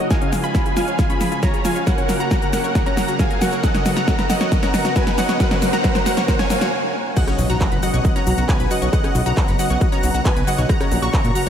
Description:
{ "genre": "uplifting trance", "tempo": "136 BPM", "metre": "4/4", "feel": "straight", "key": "unclear", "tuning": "A4 = 440 Hz", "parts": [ { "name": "dense compressed supersaw", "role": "melody", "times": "0.0-11.5 s", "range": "A#4 to C#6", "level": "-24 LUFS", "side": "equal", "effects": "sidechain pumping, low-pass filter, ping-pong delay" }, { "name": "wide unison pluck", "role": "second line", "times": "0.0-11.5 s", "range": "F#5 to C#6", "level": "-30 LUFS", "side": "right 1 dB", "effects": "none" }, { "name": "lush unison pad", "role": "sustained chords", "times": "0.0-11.5 s", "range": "C#3 to F#4", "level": "-27 LUFS", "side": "right 1 dB", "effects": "chorus, sidechain pumping" }, { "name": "analog pluck", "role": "arpeggios", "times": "0.0-11.5 s", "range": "E#3 to C#5", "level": "-26 LUFS", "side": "left 3 dB", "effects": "chorus, cassette tape, sidechain pumping, tape echo" }, { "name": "big-room dance drum kit", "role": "drums", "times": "0.0-11.5 s", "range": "crash cymbal, handclaps, hi-hat, rim click, shaker, snare drum", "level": "-24 LUFS", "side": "equal", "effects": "overdrive, studio reverb" }, { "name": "riser and impact", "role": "sound effects", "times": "0.0-8.9 s", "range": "none", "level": "-29 LUFS", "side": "right 1 dB", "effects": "none" }, { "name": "electronic kick drum", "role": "drums", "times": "0.1-11.2 s", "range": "none", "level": "-20 LUFS", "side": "equal", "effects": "overdrive, studio reverb" }, { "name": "fat analog bass", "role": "bass", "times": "7.4-11.5 s", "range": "F#1 to A#2", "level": "-20 LUFS", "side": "equal", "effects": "sidechain pumping" } ], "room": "moderate huge ambient reverb, RT60 4.7 s", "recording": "dreamy mix soaked in reverb", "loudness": "-16 LUFS", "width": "side -9 dB against mid", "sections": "0.0-7.2 A section; 7.2-11.5 B section", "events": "build-up 0.0-7.2; drum fill 0.0-6.7; riser 0.0-6.7; filter sweep on synth pluck 0.0-7.2; stop 6.7-7.2; drop 7.2-11.5; impact 7.2-8.9", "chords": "0.1 C#; 1.9 F#; 3.6 Bsus2; 5.4 F#; 7.2 Bsus2; 10.7 F#/A#" }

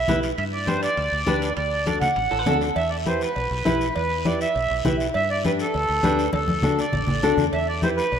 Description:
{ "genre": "latin, cumbia", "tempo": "201 BPM", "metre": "4/4", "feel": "straight", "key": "E minor", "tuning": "A4 = 438 Hz", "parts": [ { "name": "accordion", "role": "melody", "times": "0.0-8.2 s", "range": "A4 to F#5", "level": "-24 LUFS", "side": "right 2 dB", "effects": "none" }, { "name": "fingered electric bass", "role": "bass", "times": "0.0-8.2 s", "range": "A1 to G2", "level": "-29 LUFS", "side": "equal", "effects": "none" }, { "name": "flamenco guitar", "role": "accompaniment", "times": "0.1-8.0 s", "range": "D4 to B4", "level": "-25 LUFS", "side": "left 2 dB", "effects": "none" }, { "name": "congas", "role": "percussion", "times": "0.1-8.2 s", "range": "none", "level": "-28 LUFS", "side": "left 2 dB", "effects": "none" }, { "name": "guiro", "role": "percussion", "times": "0.1-8.2 s", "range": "none", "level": "-37 LUFS", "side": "left 6 dB", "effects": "none" }, { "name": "timbales and cowbell", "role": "percussion", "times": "0.1-8.2 s", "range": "none", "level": "-35 LUFS", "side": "right 7 dB", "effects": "none" }, { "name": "semi-hollow electric guitar", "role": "second line", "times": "2.3-2.7 s", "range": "A4 to B4", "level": "-31 LUFS", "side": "right 1 dB", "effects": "none" } ], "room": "moderate lush hall reverb, RT60 2.5 s", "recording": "rough home demo mix", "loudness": "-20 LUFS", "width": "side -8 dB against mid", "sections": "0.0-2.8 A section; 2.8-8.2 A section", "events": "drum fill 2.3-2.8, 6.3-7.5", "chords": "0.4 G; 1.6 D; 2.8 Em; 5.1 G; 6.3 D; 7.5 Em" }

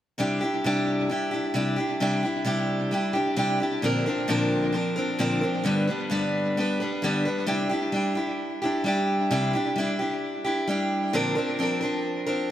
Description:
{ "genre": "rock", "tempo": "131 BPM", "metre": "4/4", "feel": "straight", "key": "C major", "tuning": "A4 = 440 Hz", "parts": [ { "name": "picked steel-string acoustic guitar", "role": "accompaniment", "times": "0.2-12.5 s", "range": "G2 to B4", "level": "-23 LUFS", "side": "equal", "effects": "tape echo" } ], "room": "light reverb", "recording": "echo-heavy mix", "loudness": "-23 LUFS", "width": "side -12 dB against mid", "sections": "0.2-7.5 A section; 7.5-12.5 B section", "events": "none", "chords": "0.2 Cadd9; 3.8 Bbadd9; 5.7 G; 7.5 Cadd9; 11.1 Bbadd9" }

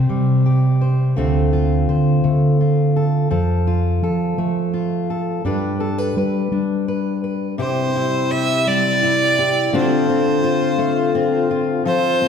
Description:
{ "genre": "folk", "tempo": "56 BPM (dotted quarters)", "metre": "6/8", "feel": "straight", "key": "C major", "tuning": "A4 = 438 Hz", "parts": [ { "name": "fingerpicked steel-string acoustic guitar", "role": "accompaniment", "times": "0.0-12.3 s", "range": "C3 to C5", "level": "-20 LUFS", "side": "left 3 dB", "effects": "none" }, { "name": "fingered electric bass", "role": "bass", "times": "0.0-7.5 s", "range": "D2 to G3", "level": "-18 LUFS", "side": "right 1 dB", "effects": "none" }, { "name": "clear fiddle", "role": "melody", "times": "7.6-12.3 s", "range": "C5 to E5", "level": "-19 LUFS", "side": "right 2 dB", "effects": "none" }, { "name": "mellow brass ensemble", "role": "sustained chords", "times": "7.6-12.3 s", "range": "C3 to A4", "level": "-26 LUFS", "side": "equal", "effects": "none" } ], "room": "wet concert hall reverb, RT60 2.0 s", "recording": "recorded in a church or concert hall", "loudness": "-16 LUFS", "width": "side -7 dB against mid", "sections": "0.0-7.6 A section; 7.6-12.3 B section", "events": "none", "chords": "0.0 C5; 1.2 Dm7; 3.3 F; 5.4 G; 7.6 C; 9.7 Dm7" }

